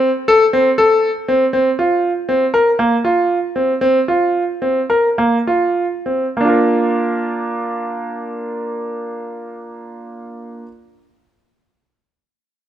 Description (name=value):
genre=contemporary instrumental, contemporary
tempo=194-241 BPM (eighths)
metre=9/8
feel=straight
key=Bb major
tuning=A4 = 440 Hz
part: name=bright concert grand piano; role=solo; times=0.0-10.7 s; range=Bb3 to Bb4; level=-15 LUFS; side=equal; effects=none
room=light reverb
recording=dark, warm production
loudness=-14 LUFS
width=side -10 dB against mid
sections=0.0-1.5 A section; 1.5-6.4 B section; 6.4-9.1 C section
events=slowing down 2.0-6.4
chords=0.0 Am/C; 1.5 Bbsus2; 6.4 Bb